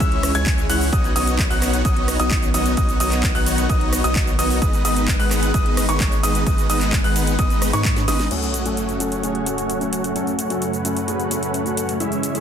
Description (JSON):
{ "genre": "EDM, festival progressive house", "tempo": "130 BPM", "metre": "4/4", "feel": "straight", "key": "unclear", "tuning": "A4 = 440 Hz", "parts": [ { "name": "lush unison pad", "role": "sustained chords", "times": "0.0-12.4 s", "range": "C#2 to C#5", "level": "-28 LUFS", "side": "equal", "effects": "chorus, phaser, sidechain pumping" }, { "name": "warm concert grand piano", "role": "arpeggios", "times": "0.0-8.3 s", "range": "C#6 to G#6", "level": "-26 LUFS", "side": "left 2 dB", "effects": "sidechain pumping, low-pass filter, dub echo" }, { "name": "dense compressed supersaw", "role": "riff", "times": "0.0-12.4 s", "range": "G#3 to G#5", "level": "-23 LUFS", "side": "right 1 dB", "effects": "sidechain pumping, low-pass filter, dub echo" }, { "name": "saturated sub bass", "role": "bass", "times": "0.0-8.3 s", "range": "G#1 to G#2", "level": "-24 LUFS", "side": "equal", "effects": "sidechain pumping" }, { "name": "electronic kick drum", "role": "drums", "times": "0.0-7.9 s", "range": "none", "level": "-21 LUFS", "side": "equal", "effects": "overdrive" }, { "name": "house drum kit", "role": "drums", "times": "0.0-12.4 s", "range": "crash cymbal, handclaps, hi-hat, ride cymbal, rim click, shaker, snare drum", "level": "-26 LUFS", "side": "equal", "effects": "overdrive" }, { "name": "felt-muted upright piano", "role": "accompaniment", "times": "8.3-12.4 s", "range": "E3 to A4", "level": "-27 LUFS", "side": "left 4 dB", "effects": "sidechain pumping, dub echo" }, { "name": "sub drop", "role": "sound effects", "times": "8.3-10.2 s", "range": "none", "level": "-31 LUFS", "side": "equal", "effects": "none" } ], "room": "light reverb, digital ambience", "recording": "dense, heavily limited modern master", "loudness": "-17 LUFS", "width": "side -8 dB against mid", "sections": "0.0-8.3 A section; 8.3-12.4 B section", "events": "drop 0.0-8.3; drum fill 8.0-8.3; impact 8.3-10.2", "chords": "0.0 C#m; 0.9 Badd9; 4.6 G#m; 8.3 F#m" }